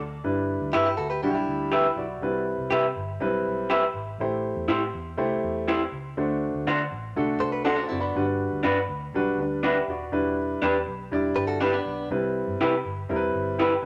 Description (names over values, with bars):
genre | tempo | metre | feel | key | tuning
soul | 121 BPM | 4/4 | straight | G major | A4 = 439 Hz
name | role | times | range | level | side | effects
vintage muted fingered electric bass | bass | 0.0-13.9 s | Eb1 to D3 | -38 LUFS | equal | none
warm upright piano | accompaniment | 0.2-13.9 s | G3 to B5 | -29 LUFS | equal | none
direct-recorded clean electric guitar | riff | 0.7-2.1, 7.4-8.3, 11.4-12.1 s | B3 to C5 | -31 LUFS | equal | none
electric guitar through a small old amp | stabs | 0.7-13.7 s | D4 to E5 | -28 LUFS | equal | spring reverb
room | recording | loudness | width
moderate studio reverb, RT60 0.6 s | none | -26 LUFS | mono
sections
0.2-13.9 A section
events
upright piano fill 7.4-8.2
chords
0.2 G6; 2.2 Cmaj7; 4.2 Am7; 6.2 D7; 8.2 Gmaj7; 10.1 Em7; 12.1 Cmaj7